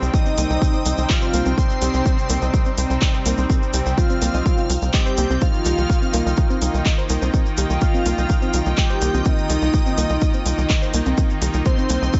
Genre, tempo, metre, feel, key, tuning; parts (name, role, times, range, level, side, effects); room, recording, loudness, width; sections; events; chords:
melodic techno; 125 BPM; 4/4; straight; A4 = 439 Hz
warm studio string section; sustained chords; 0.0-12.2 s; Eb4 to G5; -33 LUFS; equal; sidechain pumping
brassy analog pad; stabs; 0.0-12.2 s; C3 to Eb4; -30 LUFS; equal; chorus, cassette tape, sidechain pumping, digital delay
tight sequencer bass; bass; 0.0-12.1 s; C2; -23 LUFS; equal; sidechain pumping
tube shaker; percussion; 0.0-12.2 s; -36 LUFS; equal
downlifter; sound effects; 0.0-1.6 s; barely audible
unison lead; melody; 0.1-12.2 s; C4 to G4; -29 LUFS; equal; sidechain pumping, delay
airy dreamy lead; second line; 0.1-12.2 s; C5 to G5; -32 LUFS; equal; chorus, sidechain pumping, digital delay
electronic kick drum; drums; 0.1-12.2 s; -21 LUFS; equal
soft round pluck; arpeggios; 0.3-12.1 s; Bb3 to Eb6; -31 LUFS; equal; chorus, sidechain pumping, digital delay
house drum kit; drums; 0.4-12.0 s; handclaps, hi-hat; -28 LUFS; equal
little or no reverb; nothing above 7.8 kHz; -19 LUFS; mono
0.0-12.2 A section
0.0 Cm; 5.4 Ebadd9/C